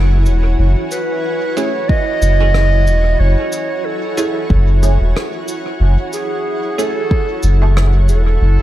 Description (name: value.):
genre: ambient dub.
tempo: 92 BPM.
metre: 4/4.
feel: swing 56% on 16ths.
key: F# dorian.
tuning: A4 = 437 Hz.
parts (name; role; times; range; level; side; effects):
mellow clarinet; melody; 0.0-8.6 s; G#4 to D#5; -21 LUFS; right 2 dB; vintage 12-bit sampler grit, dub echo.
granular cloud pad; sustained chords; 0.0-8.6 s; E4 to G#5; -24 LUFS; left 2 dB; built-in reverb.
warm sub bass; bass; 0.0-8.6 s; E1 to F#1; -11 LUFS; equal; none.
bubbling stepped-filter texture; texture; 0.0-8.6 s; E4; -28 LUFS; right 3 dB; chorus, built-in reverb.
cabasa and rim click; drums; 0.3-8.2 s; none; -27 LUFS; equal; dub echo.
filtered dub chord stab; stabs; 1.6-7.7 s; A3 to G#4; -25 LUFS; right 2 dB; phaser, lush chorus, dub echo.
electronic kick drum; drums; 1.9-7.3 s; none; -15 LUFS; equal; none.
room: light reverb, small room ambience.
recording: none.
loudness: -13 LUFS.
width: side -14 dB against mid.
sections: 0.0-8.6 A section.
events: none.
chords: 0.0 F#m7.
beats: | 0.59 1.24 1.89 2.54 | 3.20 3.85 4.50 5.15 | 5.81 6.46 7.11 7.76 | 8.41.